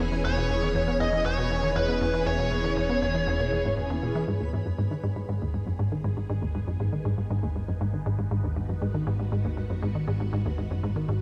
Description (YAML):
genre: ambient, sequencer-driven space music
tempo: 119 BPM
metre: 4/4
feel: straight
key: unclear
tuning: A4 = 439 Hz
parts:
  - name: phased string machine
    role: sustained chords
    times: 0.0-11.2 s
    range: D#3 to G#4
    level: -36 LUFS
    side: equal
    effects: ensemble chorus, phaser
  - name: resonant blip pluck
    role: riff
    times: 0.0-11.1 s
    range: D#2 to B3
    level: -30 LUFS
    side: equal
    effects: chorus, cassette tape, delay
  - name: warm sub bass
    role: bass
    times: 0.0-11.2 s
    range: E1 to G#1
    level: -38 LUFS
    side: equal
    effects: none
  - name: twinkling granular texture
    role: texture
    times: 0.0-4.3 s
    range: B3 to B4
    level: -43 LUFS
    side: equal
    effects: built-in reverb
  - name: biting lead guitar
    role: melody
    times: 0.2-3.7 s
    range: B4 to D#5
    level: -32 LUFS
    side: equal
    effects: overdrive, delay
room: wet plate reverb, RT60 3.5 s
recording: dark, warm production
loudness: -27 LUFS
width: mono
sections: 0.0-4.3 A section; 4.3-11.2 B section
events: fade-in on sub bass 4.3-11.2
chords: 0.0 E6; 4.3 G#m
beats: | 0.25 0.75 1.25 1.76 | 2.26 2.77 3.27 3.78 | 4.28 4.79 5.29 5.79 | 6.30 6.80 7.31 7.81 | 8.31 8.82 9.32 9.83 | 10.33 10.84